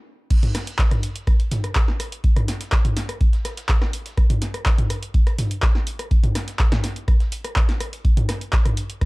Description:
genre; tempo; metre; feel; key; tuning
house; 124 BPM; 4/4; straight; none; none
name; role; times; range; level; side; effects
dusty soul sampler-style drum kit; drums; 0.3-9.1 s; hi-hat, snare drum; -42 LUFS; equal; none
electronic kick drum; drums; 0.3-9.1 s; none; -18 LUFS; equal; none
punchy analog drum machine; drums; 0.3-9.1 s; crash cymbal, handclaps, hi-hat, rim click, snare drum, toms; -25 LUFS; equal; none
room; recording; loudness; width
little or no reverb; dry, gritty hardware recording; -18 LUFS; side -24 dB against mid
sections
0.3-9.1 A section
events
stop 0.0-0.3; drop 0.3-9.1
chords
none

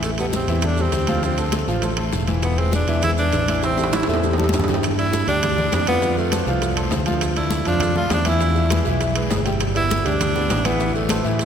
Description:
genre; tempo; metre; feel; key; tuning
latin, salsa; 201 BPM; 4/4; straight; A minor; A4 = 440 Hz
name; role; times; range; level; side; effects
clear tenor saxophone; melody; 0.0-11.4 s; A3 to F4; -24 LUFS; right 1 dB; none
clear concert grand piano; accompaniment; 0.0-11.4 s; E3 to G5; -25 LUFS; equal; none
fingered electric bass; bass; 0.0-11.4 s; E1 to A2; -22 LUFS; equal; none
bongos; percussion; 0.0-11.4 s; none; -32 LUFS; left 4 dB; none
congas; percussion; 0.0-11.4 s; none; -28 LUFS; left 2 dB; none
guiro; percussion; 0.0-11.4 s; none; -36 LUFS; left 5 dB; none
maracas; percussion; 0.0-11.4 s; none; -37 LUFS; right 6 dB; none
timbales; percussion; 0.0-11.4 s; none; -29 LUFS; right 3 dB; none
room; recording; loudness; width
wet cathedral reverb, RT60 5.3 s; recorded in a church or concert hall; -18 LUFS; side -8 dB against mid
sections
0.0-4.8 A section; 4.8-11.4 B section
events
drum fill 3.6-4.8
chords
0.0 Am7; 1.2 Dm7; 2.4 E7; 3.6 Am7; 4.8 G5; 6.0 F; 7.2 Dm; 8.4 E; 9.6 G; 10.8 Am

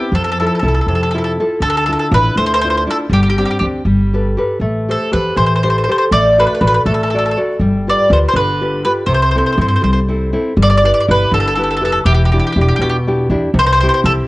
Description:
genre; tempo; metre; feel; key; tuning
italian folk, Italian serenade; 81 BPM (dotted quarters); 6/8; straight; C major, G major from 10.6 s; A4 = 440 Hz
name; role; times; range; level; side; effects
bowl-back mandolin; melody; 0.0-14.1 s; G4 to D5; -15 LUFS; equal; cassette tape
nylon-string guitar; accompaniment; 0.0-14.3 s; B2 to D5; -17 LUFS; left 1 dB; cassette tape
upright bass; bass; 0.1-14.2 s; E1 to G2; -16 LUFS; equal; tube saturation
room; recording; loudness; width
small room ambience; home recording on cassette; -12 LUFS; side -19 dB against mid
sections
0.0-10.6 A section; 10.6-14.3 B section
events
none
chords
0.1 Fmaj7; 1.6 Dmadd9; 3.1 Gsus4; 3.9 Gadd9; 4.6 Am7; 6.1 D/A; 7.6 G7; 9.1 C6; 10.6 G6; 12.1 Em7; 13.5 C

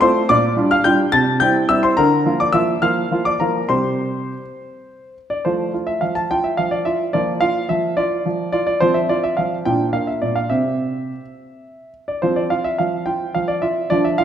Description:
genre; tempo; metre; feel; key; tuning
classical-period piano sonatina; 71 BPM (dotted quarters); 6/8; straight; F major; A4 = 439 Hz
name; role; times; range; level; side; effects
clear concert grand piano; solo; 0.0-14.2 s; Bb2 to A6; -16 LUFS; equal; none
room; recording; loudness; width
wet recital hall reverb, RT60 1.7 s; none; -16 LUFS; side -9 dB against mid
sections
0.0-5.5 A section; 5.5-14.2 B section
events
none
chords
0.3 Gm7/Bb; 1.1 C; 2.0 Bb/D; 3.7 C5; 5.5 F; 7.2 Bb/F; 8.8 F5; 9.7 Bb; 10.5 C; 12.2 F5

